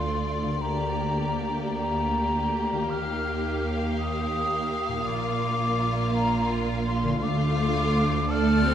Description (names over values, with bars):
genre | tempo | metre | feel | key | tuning
cinematic, emotional film score for orchestra | 51-56 BPM (dotted quarters) | 6/8 | rubato | Bb major | A4 = 440 Hz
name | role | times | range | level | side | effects
rich studio violin section | melody | 0.0-8.7 s | D5 to F5 | -36 LUFS | left 3 dB | none
rich studio violin section | second line | 0.0-8.7 s | F4 to A4 | -34 LUFS | left 2 dB | none
silver concert flute | second line | 0.0-8.7 s | Bb5 to F6 | -29 LUFS | left 2 dB | none
rich studio viola section | accompaniment | 0.0-8.7 s | A3 to C4 | -31 LUFS | right 2 dB | none
concert harp | arpeggios | 0.0-8.7 s | Bb2 to D5 | -33 LUFS | left 3 dB | none
warm studio cello section | bass | 0.0-8.7 s | D2 to Bb2 | -32 LUFS | right 2 dB | none
warm studio double bass section | bass | 0.0-8.7 s | Bb1 to Eb2 | -31 LUFS | right 3 dB | none
room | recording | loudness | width
wet scoring stage reverb, RT60 1.6 s | faint mains hum | -24 LUFS | side -10 dB against mid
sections
0.0-8.7 A section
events
none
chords
0.0 Dm; 0.6 Gm/D; 2.9 Ebadd9; 5.1 Bb; 7.2 Dm